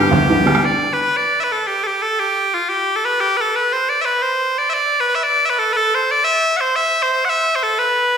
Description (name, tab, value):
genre	celtic folk, Celtic jig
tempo	118 BPM (dotted quarters)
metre	6/8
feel	straight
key	G major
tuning	A4 = 438 Hz
part	loud bright bagpipes	melody	0.0-8.2 s	F4 to F#5	-15 LUFS	equal	none
part	bright upright piano	accompaniment	0.0-0.6 s	D2 to B3	-17 LUFS	equal	none
part	bodhran	percussion	0.1-0.6 s	none	-20 LUFS	right 3 dB	none
room	wet recital hall reverb, RT60 1.7 s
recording	recorded in a church or concert hall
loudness	-15 LUFS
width	side -7 dB against mid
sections	0.6-8.2 A section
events	none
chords	0.0 G; 0.6 N.C.